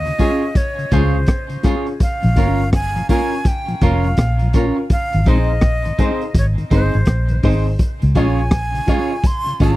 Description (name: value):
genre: roots reggae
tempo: 83 BPM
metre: 4/4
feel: swing 63% on 16ths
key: unclear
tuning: A4 = 440 Hz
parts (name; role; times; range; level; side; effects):
- breathy bright jazz flute; melody; 0.0-9.8 s; C5 to C6; -24 LUFS; equal; tape echo
- vintage muted fingered electric bass; bass; 0.0-9.8 s; F1 to Eb2; -17 LUFS; equal; none
- clean electric guitar; accompaniment; 0.1-9.8 s; C4 to Db5; -25 LUFS; right 5 dB; tape echo
- mellow tonewheel organ; accompaniment; 0.1-9.7 s; Ab2 to F4; -23 LUFS; left 2 dB; chorus vibrato, stopped rotary speaker
- crunchy breakbeat drum kit; drums; 0.1-9.8 s; hi-hat, kick drum, rim click; -18 LUFS; equal; none
- dark upright piano; stabs; 0.2-9.8 s; Db4 to Db5; -24 LUFS; left 3 dB; none
room: little or no reverb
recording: dry, close 1970s-style studio recording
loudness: -14 LUFS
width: side -17 dB against mid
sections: 0.0-9.8 A section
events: none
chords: 0.0 Db; 2.0 Bbm; 4.9 Ab; 7.8 Db